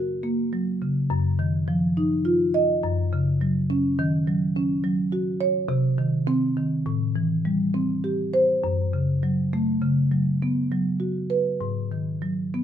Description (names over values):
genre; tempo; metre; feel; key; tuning
classical, contemporary piece for solo marimba; 103 BPM; 5/4; rubato; unclear; A4 = 440 Hz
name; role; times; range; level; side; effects
marimba with soft mallets; solo; 0.0-12.6 s; Gb2 to Eb5; -21 LUFS; equal; none
room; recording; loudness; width
moderate large studio reverb, RT60 1.1 s; minimal, uncompressed stereo recording; -21 LUFS; side -10 dB against mid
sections
0.0-12.6 A section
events
none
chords
0.0 Gb; 1.1 Ebmadd9/Gb; 2.8 Dbsus4/Gb; 4.0 Ebm7; 5.7 Cm; 6.9 Am7; 8.6 Gbm; 9.8 Db7sus4; 11.6 Ab7(no3)